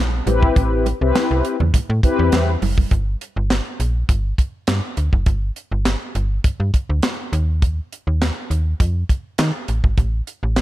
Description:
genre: early-eighties boogie funk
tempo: 102 BPM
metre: 4/4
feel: straight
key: unclear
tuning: A4 = 441 Hz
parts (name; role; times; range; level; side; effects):
- slap-like FM bass; bass; 0.0-10.6 s; F#1 to Eb3; -19 LUFS; equal; none
- mellow synth brass; accompaniment; 0.3-2.5 s; C4 to B4; -20 LUFS; left 4 dB; chorus
- tight funk drum kit; drums; 0.3-10.6 s; handclaps, hi-hat, kick drum, snare drum; -18 LUFS; equal; gated reverb
- congas; percussion; 0.3-2.9 s; none; -28 LUFS; right 9 dB; none
room: small room ambience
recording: none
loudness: -17 LUFS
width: side -15 dB against mid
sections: 0.0-2.9 A section; 2.9-10.6 B section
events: none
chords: 0.3 Am9; 2.9 N.C.; 9.7 F#madd9 (rootless)

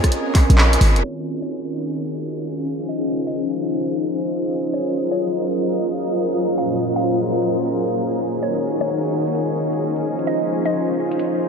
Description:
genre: UK garage, two-step garage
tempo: 130 BPM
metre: 4/4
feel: swing 65% on 16ths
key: Eb dorian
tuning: A4 = 440 Hz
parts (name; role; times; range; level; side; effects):
- warm analog pad; sustained chords; 0.0-11.5 s; Bb2 to Db5; -23 LUFS; equal; chorus, sidechain pumping
- electronic kick drum; drums; 0.0-0.5 s; none; -15 LUFS; equal; none
- punchy analog drum machine; drums; 0.0-11.3 s; handclaps, hi-hat, rim click; -22 LUFS; equal; low-pass filter on hats, low-pass filter on perc, low-pass filter on snare, low-pass filter on room
- granular cloud pad; texture; 0.0-11.5 s; Gb3 to Ab5; -23 LUFS; left 1 dB; built-in reverb, sidechain pumping
- short 808-style bass; bass; 0.5-1.0 s; F1 to Bb1; -13 LUFS; equal; tube saturation
- mallet-like synth pluck; melody; 1.0-10.9 s; Db5 to F5; -30 LUFS; equal; chorus, phaser, tape echo
room: wet huge ambient reverb, RT60 8.6 s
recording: dreamy mix soaked in reverb, low-pass filter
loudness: -18 LUFS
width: side -6 dB against mid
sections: 0.0-1.0 A section; 1.0-11.5 B section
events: kick drops out 0.6-1.0; band accent 0.6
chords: 0.0 Bbm7; 1.0 Ebm11; 2.7 Dbmaj9; 4.7 Gbmaj9#11; 6.6 Bbm7; 8.4 Ebm11; 10.0 Dbmaj9

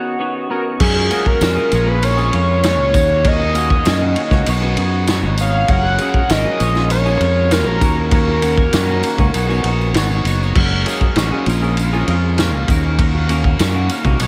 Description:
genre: indie rock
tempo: 99 BPM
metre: 4/4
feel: straight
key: unclear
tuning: A4 = 439 Hz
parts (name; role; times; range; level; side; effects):
- overdriven synth lead; melody; 0.0-9.9 s; F#4 to F#5; -22 LUFS; equal; chorus, tape echo
- electric guitar through a small old amp; riff; 0.0-14.2 s; D#3 to G#4; -29 LUFS; equal; subtle chorus, tape echo
- twangy electric guitar; riff; 0.0-14.3 s; A#2 to C#5; -26 LUFS; equal; analog chorus
- barky tine electric piano; second line; 0.5-9.9 s; C#4 to C#5; -34 LUFS; equal; analog chorus, tape echo
- fingered electric bass; bass; 0.8-14.3 s; F#1 to F#2; -20 LUFS; equal; none
- loose indie drum kit; drums; 0.8-14.3 s; crash cymbal, kick drum, ride cymbal, snare drum; -21 LUFS; equal; none
- tambourine; percussion; 1.1-14.3 s; none; -36 LUFS; equal; none
room: light reverb, studio reverb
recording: none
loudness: -16 LUFS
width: mono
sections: 0.8-14.3 A section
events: break 0.0-0.8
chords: 0.0 Badd9; 0.8 F#add9; 1.7 A#m7; 2.9 D#m7; 4.5 Badd9; 5.7 F#add9; 6.6 A#m7; 7.8 D#m7; 9.3 Badd9; 10.6 F#add9; 11.5 A#m7; 12.7 D#m7

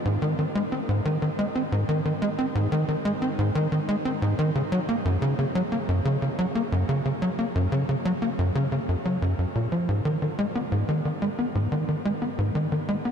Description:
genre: ambient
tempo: 90 BPM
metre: 4/4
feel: straight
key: G# minor from 9.9 s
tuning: A4 = 440 Hz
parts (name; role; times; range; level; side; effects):
- tight sequencer bass; solo; 0.1-13.1 s; Gb2 to C4; -23 LUFS; equal; lush chorus, ping-pong delay
room: wet shimmer reverb, RT60 8.6 s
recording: dark, warm production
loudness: -23 LUFS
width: side -7 dB against mid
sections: 0.0-9.9 A section; 9.9-13.1 B section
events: none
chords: none

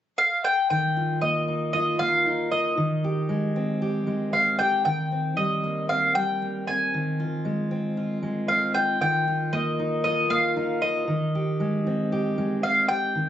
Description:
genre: folk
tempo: 116 BPM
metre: 4/4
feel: straight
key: Eb major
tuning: A4 = 439 Hz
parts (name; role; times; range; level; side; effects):
- mandolin; melody; 0.2-13.3 s; Eb5 to Ab5; -24 LUFS; left 1 dB; none
- fingerpicked steel-string acoustic guitar; accompaniment; 0.7-13.3 s; Eb3 to G4; -26 LUFS; equal; none
room: light reverb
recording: recorded on a phone in the room, studio ambience, nothing above 7.9 kHz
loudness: -22 LUFS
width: side -11 dB against mid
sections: 0.7-13.3 A section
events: none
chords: 0.0 N.C.; 0.7 Ebadd9; 2.8 Abmaj7/Eb; 4.9 Cm7/Eb; 6.9 Fm7/Eb; 9.0 Ebadd9; 11.1 Abmaj7/Eb

